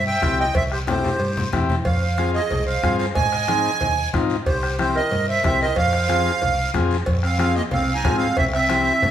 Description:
latin, cumbia; 184 BPM; 4/4; straight; A4 = 442 Hz
accordion; melody; 0.0-9.1 s; C5 to Ab5; -22 LUFS; right 4 dB; light tremolo tuning
growling clarinet; second line; 0.0-9.1 s; Bb3 to E5; -27 LUFS; right 2 dB
hollow-body short-scale fingered electric bass; bass; 0.0-9.1 s; C2 to Ab2; -25 LUFS; equal
combo organ; accompaniment; 0.2-8.9 s; C4 to Ab4; -26 LUFS; left 5 dB
bombo; percussion; 0.2-8.9 s; -27 LUFS; equal
congas; percussion; 0.2-9.1 s; -30 LUFS; left 2 dB
cowbell and timbales; percussion; 0.2-9.1 s; -32 LUFS; right 1 dB
guiro; percussion; 0.2-9.1 s; -35 LUFS; left 4 dB
wet large studio reverb, RT60 1.1 s; band playing live in one room; -18 LUFS; side -10 dB against mid
0.0-7.1 A section; 7.1-9.1 B section
drum fill 0.5-1.9
0.0 C; 1.9 Fm; 3.2 Ab; 4.5 C7; 5.8 Fm; 8.4 C

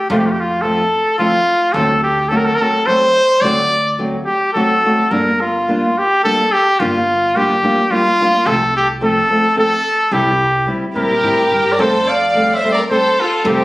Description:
mexican folk, mariachi; 108 BPM; 3/4; rubato; F major; A4 = 440 Hz
bright trumpet; melody; 0.0-13.6 s; F4 to F5; -14 LUFS; equal
nylon-string guitar; accompaniment; 0.1-13.6 s; F2 to A4; -18 LUFS; equal
upright bass; bass; 0.1-13.6 s; G1 to Bb2; -26 LUFS; right 1 dB
rich studio violin section; second line; 11.0-13.6 s; C4 to D5; -18 LUFS; right 1 dB
moderate studio reverb, RT60 0.5 s; recorded on a phone in the room, studio reverb, compression; -12 LUFS; side -19 dB against mid
0.0-13.6 A section
0.0 F; 1.8 D7; 5.1 Gm7; 8.5 F/C; 10.1 C; 11.8 Fadd9

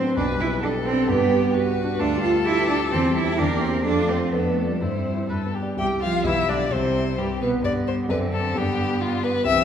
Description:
quick classical-period movement for piano quartet; 130 BPM; 2/4; rubato; C major; A4 = 440 Hz
warm violin; melody; 0.0-9.6 s; D4 to G5; -27 LUFS; left 5 dB
rich cello; second line; 0.0-9.6 s; G2 to F4; -24 LUFS; right 3 dB
dark concert grand piano; accompaniment; 0.0-9.6 s; B1 to F5; -25 LUFS; left 1 dB
warm viola; accompaniment; 0.0-9.6 s; G3 to C5; -28 LUFS; right 1 dB
wet scoring stage reverb, RT60 1.7 s; heard from further back in the room; -20 LUFS; side -8 dB against mid
0.0-5.8 A section; 5.8-9.6 B section
0.2 G/B; 1.1 G; 2.0 G7/D; 2.9 C/E; 3.4 C7/E; 3.9 F; 4.3 Dm/F; 4.8 C/G; 5.3 G; 5.8 C; 6.3 G7/B; 6.7 C; 7.6 G; 8.1 D7/F#; 8.6 G

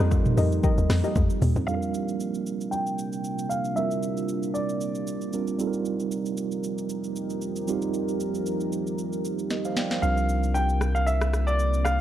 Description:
amapiano; 115 BPM; 4/4; swing 55% on 16ths; A4 = 440 Hz
warm grand piano; melody; 0.0-5.5, 10.0-12.0 s; C5 to G5; -29 LUFS; equal; low-pass filter, slapback echo
mellow tine electric piano; accompaniment; 0.0-12.0 s; G3 to G5; -29 LUFS; right 6 dB; medium stereo tremolo, low-pass filter
deep dark ambient pad; sustained chords; 0.0-12.0 s; C3 to Bb4; -33 LUFS; left 1 dB; chorus, built-in reverb, sidechain pumping, low-pass filter
deep mellow chord stab; stabs; 0.0-1.2 s; G4 to Eb5; -31 LUFS; left 4 dB; chorus, slapback echo
hollow log drum bass; bass; 0.0-1.7 s; Eb2 to F2; -24 LUFS; equal
afro-pop drum kit; drums; 0.0-12.0 s; hi-hat, kick drum, rim click, shaker, snare drum, toms; -29 LUFS; equal
bongos and congas; percussion; 0.1-1.3 s; -35 LUFS; left 7 dB
punchy sub bass; bass; 10.0-12.0 s; C2; -24 LUFS; equal
digital ambience; -24 LUFS; side -11 dB against mid
0.0-1.7 A section; 1.7-12.0 B section
drop 0.0-1.7; drum fill 1.2-1.7, 9.5-10.0; filter sweep 1.7-12.0
0.0 F9sus4; 1.7 C9sus4; 5.6 F9sus4; 10.0 C9sus4

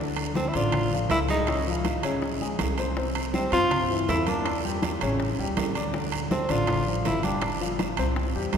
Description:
Afro-Cuban jazz; 161 BPM; 4/4; straight; A4 = 439 Hz
warm grand piano; accompaniment; 0.0-8.6 s; C3 to D6; -29 LUFS; left 2 dB
upright bass; bass; 0.0-8.6 s; G1 to G2; -30 LUFS; equal
bongos; percussion; 0.2-8.6 s; -36 LUFS; left 2 dB
congas; percussion; 0.2-8.6 s; -35 LUFS; equal
timbales; percussion; 0.2-8.6 s; -33 LUFS; right 5 dB
warm tenor saxophone; melody; 0.4-7.6 s; C4 to F4; -29 LUFS; equal
guiro; percussion; 0.4-8.6 s; -40 LUFS; right 7 dB
wet cathedral reverb, RT60 5.1 s; recorded in a church or concert hall; -23 LUFS; side -7 dB against mid
0.0-8.6 A section
0.0 Dm; 1.5 Db; 3.0 C; 4.5 A7; 5.9 Dm; 7.4 G5

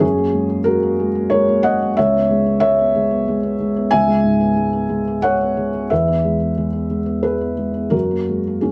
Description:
neoclassical minimalist piano; 92 BPM; 3/4; rubato; C# dorian; A4 = 440 Hz
felt-muted upright piano; solo; 0.0-8.7 s; C#2 to G#5; -18 LUFS; equal
light reverb; -18 LUFS; mono
0.0-8.7 A section
0.0 F#add9; 2.0 C#m7; 5.9 E; 7.9 F#add9

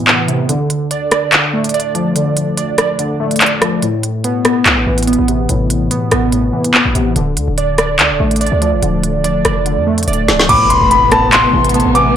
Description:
hip hop, drill; 144 BPM; 4/4; half-time; A minor; A4 = 440 Hz
warbly lo-fi synth keys; accompaniment; 0.0-12.2 s; A2 to D5; -15 LUFS; right 1 dB; chorus
drill drum kit; drums; 0.1-12.1 s; crash cymbal, handclaps, hi-hat, rim click, snare drum; -14 LUFS; equal
hard-hitting 808-style bass; bass; 4.7-12.1 s; C1 to F2; -18 LUFS; equal
clear upright piano; melody; 10.5-12.1 s; A5 to D6; -12 LUFS; equal; ping-pong delay
breathy hollow jazz flute; second line; 10.5-12.1 s; G#5 to C6; -15 LUFS; left 7 dB; ping-pong delay
dark symphonic string section; sustained chords; 10.5-12.2 s; C3 to B3; -18 LUFS; left 1 dB
impact; sound effects; 10.5-12.2 s; -24 LUFS; equal
light reverb, small room ambience; blown-out, overdriven recording, overdrive; -11 LUFS; side -9 dB against mid
0.0-10.5 A section; 10.5-12.2 B section
break 0.0-3.8; kick muted 3.8-4.7; drum fill 10.1-10.5; impact 10.5-12.2
0.5 Dm; 3.8 Amadd9; 7.2 Dm; 10.5 Amadd9

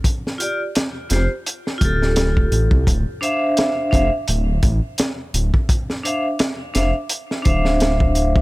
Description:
trip hop; 85 BPM; 4/4; swing 56% on 16ths; D minor; A4 = 440 Hz
crunchy breakbeat drum kit; drums; 0.0-8.4 s; hi-hat, kick drum, snare drum; -19 LUFS; equal
vibraphone with hard mallets; accompaniment; 0.4-8.4 s; D4 to F5; -21 LUFS; equal; harmonic tremolo, vintage 12-bit sampler grit, tape echo
dark detuned saw bass; bass; 1.1-8.4 s; D1 to C2; -18 LUFS; equal
small room ambience; -17 LUFS; side -20 dB against mid
0.0-8.4 A section
0.0 Fadd9; 2.9 Dm9

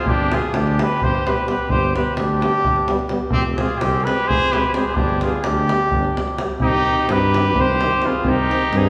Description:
balkan folk, Balkan brass band; 256 BPM (eighths); 7/8; straight; G phrygian dominant; A4 = 438 Hz
mellow trumpet; melody; 0.0-8.9 s; G4 to C5; -23 LUFS; equal
clear trumpet; second line; 0.0-8.9 s; C4 to Ab4; -27 LUFS; equal
mellow tuba; bass; 0.1-8.9 s; F1 to G2; -26 LUFS; equal
davul; percussion; 0.1-8.9 s; -26 LUFS; equal
warm French horn; accompaniment; 0.3-8.8 s; B3 to C4; -30 LUFS; equal
warm euphonium; accompaniment; 0.3-8.8 s; Eb3 to Ab3; -32 LUFS; equal
wet church reverb, RT60 2.8 s; recorded in a church or concert hall; -19 LUFS; mono
0.0-6.6 A section; 6.6-8.9 B section
0.1 G; 3.3 Fm; 5.0 G; 6.6 Cm

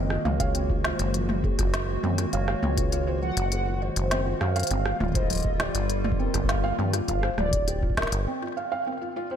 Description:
IDM; 101 BPM; 4/4; straight; A4 = 440 Hz
warbly nostalgic lead; melody; 0.0-8.3 s; Bb4 to Gb5; -33 LUFS; equal; ensemble chorus, analog delay
warbly tape-like pad; sustained chords; 0.0-8.2 s; D3 to Gb4; -33 LUFS; right 1 dB; chorus, built-in reverb
felt-muted upright piano; arpeggios; 0.0-9.4 s; F3 to F5; -32 LUFS; right 2 dB; ping-pong delay
deep acid bass; bass; 0.0-8.3 s; D1 to G2; -28 LUFS; equal
organic electronic drum kit; drums; 0.1-8.2 s; hi-hat, rim click, snare drum, toms; -31 LUFS; equal; ping-pong delay
electronic kick drum; drums; 0.4-8.1 s; -28 LUFS; equal; overdrive
light reverb, digital ambience; -23 LUFS; side -9 dB against mid
0.0-9.4 A section
break 8.3-9.4
0.0 Gb69; 4.7 Gm7

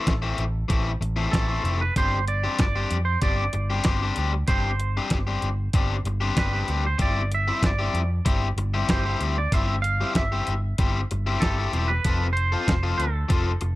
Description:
indie rock; 95 BPM; 4/4; straight; A4 = 440 Hz
twangy electric guitar; melody; 0.0-13.8 s; A4 to F5; -29 LUFS; right 3 dB; plate reverb
crunchy overdriven guitar; riff; 0.0-13.7 s; E3 to A4; -28 LUFS; left 4 dB
picked electric bass; bass; 0.1-13.8 s; E1 to F2; -26 LUFS; equal
detuned 8-bit digital drum machine; drums; 0.1-13.8 s; hi-hat, kick drum, snare drum; -24 LUFS; equal
little or no reverb; dark, warm production; -22 LUFS; side -17 dB against mid
0.0-13.8 A section
0.0 Am; 2.0 Gsus4; 7.0 C/G; 12.0 F

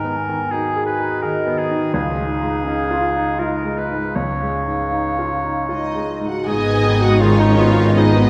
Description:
cinematic, emotional film score for orchestra; 77-85 BPM; 3/4; rubato; G# dorian; A4 = 440 Hz
clear oboe; second line; 0.0-6.1 s; G#4 to C#5; -28 LUFS; equal
mellow baroque flute; second line; 0.0-6.1 s; D#5 to A#5; -27 LUFS; equal
warm clarinet; second line; 0.0-8.3 s; B3 to G#4; -26 LUFS; equal
bright concert grand piano; accompaniment; 0.0-8.3 s; C#2 to G#4; -26 LUFS; equal
concert harp; arpeggios; 0.0-8.3 s; G#2 to G#4; -29 LUFS; equal
rich symphonic violin section; second line; 5.7-8.3 s; B4 to G#5; -29 LUFS; equal
rich symphonic violin section; melody; 6.5-8.3 s; C#5 to D#5; -27 LUFS; equal
rich symphonic viola section; accompaniment; 6.5-8.3 s; B3 to D#4; -25 LUFS; equal
rich studio cello section; bass; 6.5-8.3 s; G#2; -20 LUFS; equal
rich symphonic double bass section; bass; 6.5-8.3 s; G#1; -21 LUFS; equal
wet scoring stage reverb, RT60 1.8 s; heard from further back in the room; -19 LUFS; mono
0.0-6.5 A section; 6.5-8.3 B section
0.0 G#m; 1.9 C#add9; 6.5 G#m

